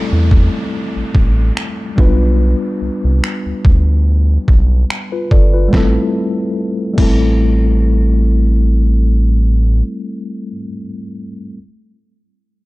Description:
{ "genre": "contemporary R&B", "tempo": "72 BPM", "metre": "4/4", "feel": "swing 54% on 16ths", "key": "A minor", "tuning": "A4 = 440 Hz", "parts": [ { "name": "mellow tine electric piano", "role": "accompaniment", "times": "0.0-11.6 s", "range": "G3 to D5", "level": "-19 LUFS", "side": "left 2 dB", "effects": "medium stereo tremolo, low-pass filter" }, { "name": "downlifter", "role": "sound effects", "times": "0.0-5.7 s", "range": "none", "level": "-32 LUFS", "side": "equal", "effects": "none" }, { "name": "round analog bass", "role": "bass", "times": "0.1-9.8 s", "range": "G1 to E2", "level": "-12 LUFS", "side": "equal", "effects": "none" }, { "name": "detuned 8-bit digital drum machine", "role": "drums", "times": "0.3-7.2 s", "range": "crash cymbal, finger snaps, kick drum, snare drum", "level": "-13 LUFS", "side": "equal", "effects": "none" } ], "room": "little or no reverb", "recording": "dark, warm production", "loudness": "-11 LUFS", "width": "side -20 dB against mid", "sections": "0.0-5.7 A section; 5.7-9.1 B section", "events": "filter sweep on tine electric piano 0.0-5.7", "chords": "0.0 Am7; 2.0 G7/B; 5.7 Am7" }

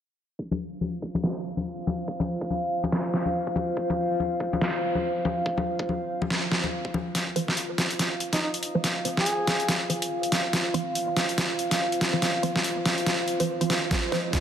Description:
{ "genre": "deep dubstep", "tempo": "142 BPM", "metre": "4/4", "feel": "swing 58% on 16ths, half-time", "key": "unclear", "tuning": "A4 = 438 Hz", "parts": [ { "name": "dark analog pad", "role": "sustained chords", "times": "0.4-14.4 s", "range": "F4 to F5", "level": "-29 LUFS", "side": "equal", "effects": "wide subtle chorus" }, { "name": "electronic kick drum", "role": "drums", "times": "0.4-6.9, 13.9-14.4 s", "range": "none", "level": "-31 LUFS", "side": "equal", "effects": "overdrive, high-pass filter on kick" }, { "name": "congas", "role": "percussion", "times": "0.5-7.0 s", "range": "none", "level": "-30 LUFS", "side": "left 3 dB", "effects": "dub echo" }, { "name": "dubstep drum kit", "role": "drums", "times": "1.2-14.4 s", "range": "hi-hat, snare drum", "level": "-26 LUFS", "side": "equal", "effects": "overdrive, low-pass filter on snare, low-pass filter on hats" }, { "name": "filtered dub chord stab", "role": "stabs", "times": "7.4-14.3 s", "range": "F3 to C5", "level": "-30 LUFS", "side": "right 2 dB", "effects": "phaser, dub echo" }, { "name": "warm duduk", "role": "melody", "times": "8.3-9.8 s", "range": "Eb4 to Ab4", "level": "-31 LUFS", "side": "equal", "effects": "dub echo" }, { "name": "riser", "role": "sound effects", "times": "14.1-14.4 s", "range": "none", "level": "-46 LUFS", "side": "right 2 dB", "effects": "none" } ], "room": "wet echo chamber reverb, RT60 2.0 s", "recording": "dense, heavily limited modern master, low-pass filter", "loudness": "-24 LUFS", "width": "side -9 dB against mid", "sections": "0.4-7.2 A section; 7.2-14.4 B section", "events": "filter sweep on drum 0.4-7.2; filter sweep 0.4-7.2; build-up 7.2-14.4; drum fill 7.2-14.4; filter sweep on synth stab 7.2-14.4", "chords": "0.4 F5" }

